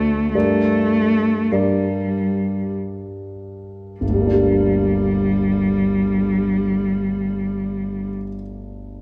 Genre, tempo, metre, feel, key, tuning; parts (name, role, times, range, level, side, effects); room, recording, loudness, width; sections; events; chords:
classical, romantic duo for cello and grand piano; 45-54 BPM; 3/4; rubato; G minor; A4 = 439 Hz
warm cello; melody; 0.0-8.1 s; G3 to A3; -22 LUFS; equal
warm concert grand piano; accompaniment; 0.0-9.0 s; G1 to D5; -24 LUFS; equal
wet recital hall reverb, RT60 1.5 s; -19 LUFS; mono
0.0-4.0 A section; 4.0-8.0 B section
slowing down 0.0-4.0
0.3 Gm